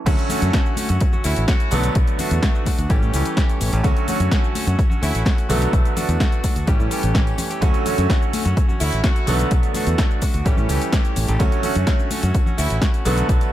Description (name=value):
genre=filtered disco house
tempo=127 BPM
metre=4/4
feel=straight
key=D major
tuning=A4 = 439 Hz
part: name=bright baby grand piano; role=accompaniment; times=0.0-13.5 s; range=D3 to C#4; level=-25 LUFS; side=right 2 dB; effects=phaser, sidechain pumping, low-pass filter, dub echo
part: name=direct-recorded clean electric guitar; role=riff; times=0.1-13.5 s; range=E3 to G4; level=-28 LUFS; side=equal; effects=spring reverb, sidechain pumping, low-pass filter, dub echo
part: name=modern bright fingered electric bass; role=bass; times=0.1-13.4 s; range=A1 to A2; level=-21 LUFS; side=equal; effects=sidechain pumping, low-pass filter
part: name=electronic kick drum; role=drums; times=0.1-13.4 s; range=none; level=-18 LUFS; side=equal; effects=overdrive
part: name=house drum kit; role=drums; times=0.1-13.5 s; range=crash cymbal, hi-hat, shaker, snare drum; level=-27 LUFS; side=equal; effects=sidechain pumping on hats, low-pass filter on hats, sidechain pumping on cymbals, low-pass filter on cymbals, sidechain pumping on perc, low-pass filter on perc, low-pass filter on snare
part: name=tambourine and congas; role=percussion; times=0.1-13.5 s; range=none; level=-32 LUFS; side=left 3 dB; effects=none
part: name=brilliant horn section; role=melody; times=1.2-1.8, 5.0-5.2, 8.8-9.3, 12.6-12.8 s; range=E4 to F#4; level=-30 LUFS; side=right 1 dB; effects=vintage 12-bit sampler grit, sidechain pumping, low-pass filter, dub echo
room=little or no reverb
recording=echo-heavy mix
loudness=-17 LUFS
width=side -13 dB against mid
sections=0.1-13.5 A section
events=drop 0.1-13.5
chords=0.1 Dmaj7; 1.7 Bm7; 2.9 A7; 3.8 Dmaj7; 5.5 Bm7; 6.7 A7; 7.6 Dmaj7; 9.3 Bm7; 10.5 A7; 11.4 Dmaj7